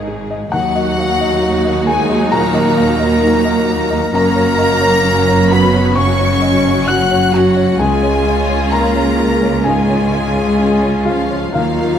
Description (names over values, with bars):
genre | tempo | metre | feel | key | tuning
cinematic, emotional film score for orchestra | 65 BPM | 4/4 | rubato | unclear | A4 = 439 Hz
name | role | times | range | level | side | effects
warm symphonic violin section | melody | 0.0-12.0 s | Eb4 to Ab4 | -25 LUFS | left 4 dB | none
felt-muted upright piano | accompaniment | 0.0-12.0 s | Db2 to Gb6 | -20 LUFS | left 2 dB | none
warm symphonic viola section | accompaniment | 0.0-12.0 s | Eb3 to Eb4 | -22 LUFS | right 1 dB | none
rich symphonic cello section | bass | 0.0-12.0 s | Db2 to Ab2 | -20 LUFS | right 3 dB | none
rich symphonic double bass section | bass | 0.0-12.0 s | Gb1 to Eb2 | -21 LUFS | right 4 dB | none
mellow clarinet | second line | 0.5-12.0 s | F4 to Gb5 | -20 LUFS | left 1 dB | none
rich symphonic violin section | second line | 0.5-12.0 s | F5 to Gb6 | -20 LUFS | left 1 dB | none
warm French horn section | sustained chords | 0.5-12.0 s | F3 to Gb4 | -18 LUFS | left 2 dB | none
room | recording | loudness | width
moderate scoring stage reverb, RT60 1.6 s | none | -11 LUFS | side -9 dB against mid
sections
0.0-12.0 A section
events
none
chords
0.0 Ab5; 0.5 Ebm; 4.1 Gb; 7.8 Db